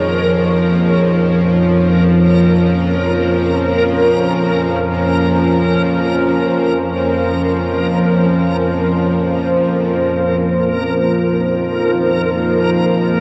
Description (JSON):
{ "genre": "ambient", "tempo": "free time", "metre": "none", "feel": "none", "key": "unclear", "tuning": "A4 = 439 Hz", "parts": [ { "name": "deep dark ambient pad", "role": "sustained chords", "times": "0.0-13.2 s", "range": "F3 to Db5", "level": "-19 LUFS", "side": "equal", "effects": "chorus, built-in reverb" }, { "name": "bowed-like drone", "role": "drone", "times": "0.0-13.2 s", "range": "F2 to F3", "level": "-18 LUFS", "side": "equal", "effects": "built-in reverb" }, { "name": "backwards swelling texture", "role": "texture", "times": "0.0-13.2 s", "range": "Bb4", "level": "-22 LUFS", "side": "equal", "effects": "built-in reverb" } ], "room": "wet huge ambient reverb, RT60 7.8 s", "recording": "worn, warbling old tape, cassette tape, warbly pitch drift", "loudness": "-15 LUFS", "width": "mono", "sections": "0.0-10.0 A section; 10.0-13.2 B section", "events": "none", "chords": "0.0 Bbm/F; 10.0 Fm" }